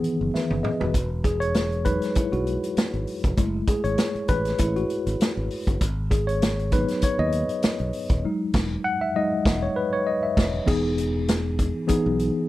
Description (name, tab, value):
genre	lush 1970s-style soul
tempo	99 BPM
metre	4/4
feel	swing 54% on 16ths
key	E major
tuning	A4 = 441 Hz
part	mellow tine electric piano	accompaniment	0.0-12.5 s	D#3 to F#5	-24 LUFS	left 1 dB	medium stereo tremolo
part	vintage drum kit	drums	0.0-12.3 s	crash cymbal, hi-hat, kick drum, snare drum, toms	-24 LUFS	equal	none
part	modern bright fingered electric bass	bass	0.2-12.3 s	D#1 to D#2	-27 LUFS	equal	none
room	little or no reverb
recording	none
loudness	-21 LUFS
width	side -16 dB against mid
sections	0.9-10.7 A section; 10.7-12.5 B section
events	drum fill 0.3-0.9; tine electric piano solo 0.9-10.7; band accent 8.2-10.7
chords	0.0 Emaj7; 3.4 F#m9; 5.8 G#m7; 8.2 Emaj7